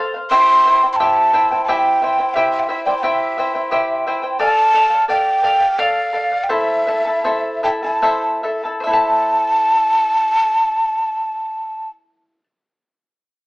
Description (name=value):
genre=andean folk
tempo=71-88 BPM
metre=3/4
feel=straight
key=A minor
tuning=A4 = 440 Hz
part: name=charango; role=accompaniment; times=0.0-12.4 s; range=E4 to A5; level=-19 LUFS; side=equal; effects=none
part: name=breathy mellow quena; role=melody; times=0.3-11.9 s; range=D5 to C6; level=-15 LUFS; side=equal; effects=none
room=moderate small room reverb, RT60 0.5 s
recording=band playing live in one room, AM radio sound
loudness=-14 LUFS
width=side -23 dB against mid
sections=0.0-8.8 A section; 8.8-13.5 B section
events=slowing down 4.4-8.8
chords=0.3 C; 4.4 Dm; 6.5 Am